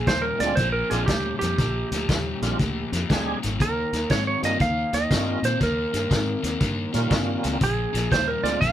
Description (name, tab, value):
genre	electric blues shuffle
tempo	119 BPM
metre	4/4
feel	swing 66% on 8ths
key	Bb mixolydian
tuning	A4 = 440 Hz
part	clean lap steel guitar	melody	0.0-8.7 s	G4 to F5	-26 LUFS	right 3 dB	none
part	crunchy overdriven guitar	riff	0.0-8.7 s	Bb2 to C4	-29 LUFS	left 4 dB	none
part	fingered electric bass	bass	0.0-8.7 s	Ab1 to Bb2	-28 LUFS	equal	none
part	warm soul drum kit	drums	0.1-8.7 s	hi-hat, kick drum, snare drum	-26 LUFS	equal	none
part	tonewheel organ	accompaniment	0.4-8.6 s	G3 to Ab4	-29 LUFS	right 4 dB	slow rotary speaker, overdrive, chorus vibrato
room	light reverb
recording	band playing live in one room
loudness	-21 LUFS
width	side -11 dB against mid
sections	0.0-8.7 A section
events	none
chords	0.0 Bb7; 3.6 Eb7; 7.6 Bb7